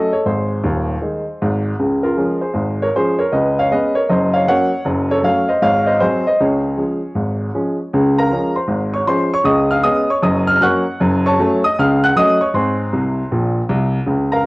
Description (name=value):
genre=jazz, stride piano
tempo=156 BPM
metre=4/4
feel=swing 64% on 8ths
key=Db major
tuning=A4 = 440 Hz
part: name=clear baby grand piano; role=solo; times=0.0-14.5 s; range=Eb1 to Gb6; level=-14 LUFS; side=equal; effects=none
room=moderate spring reverb, RT60 1.3 s, small room ambience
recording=home recording on cassette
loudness=-14 LUFS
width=side -23 dB against mid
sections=0.0-7.9 A section; 7.9-14.5 A section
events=grand piano fill 12.9-14.1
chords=0.3 Ab; 1.8 Db; 3.3 Db5; 4.1 Gb; 4.9 Gbm; 5.6 Ab7; 6.4 Db; 9.5 Db7; 10.2 Gb; 11.0 Gbm; 12.5 Ab